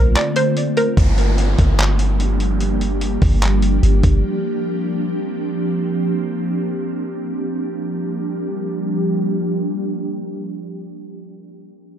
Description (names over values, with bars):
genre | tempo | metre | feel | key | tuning
hip hop, atmospheric cloud-rap | 147 BPM | 4/4 | half-time | G minor | A4 = 441 Hz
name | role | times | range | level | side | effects
hollow square pluck | melody | 0.0-1.0 s | Bb4 to D5 | -20 LUFS | right 2 dB | chorus, analog delay
ethereal airy pad | sustained chords | 0.0-11.1 s | D3 to G4 | -21 LUFS | equal | ensemble chorus, built-in reverb, sidechain pumping, low-pass filter
warm 808-style bass | bass | 0.0-4.2 s | G1 to Bb1 | -16 LUFS | equal | none
trip hop sampler-style drum kit | drums | 0.2-4.1 s | handclaps, hi-hat, kick drum | -19 LUFS | equal | overdrive
downlifter | sound effects | 1.0-4.2 s | none | -29 LUFS | right 1 dB | none
room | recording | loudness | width
little or no reverb | echo-heavy mix | -17 LUFS | side -9 dB against mid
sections
1.0-7.5 A section; 7.5-10.8 B section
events
break 0.2-1.0; filter sweep on ambient pad 1.0-7.5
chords
0.0 Bbmaj9; 1.0 Gm7; 4.2 C9sus4; 7.5 Gm7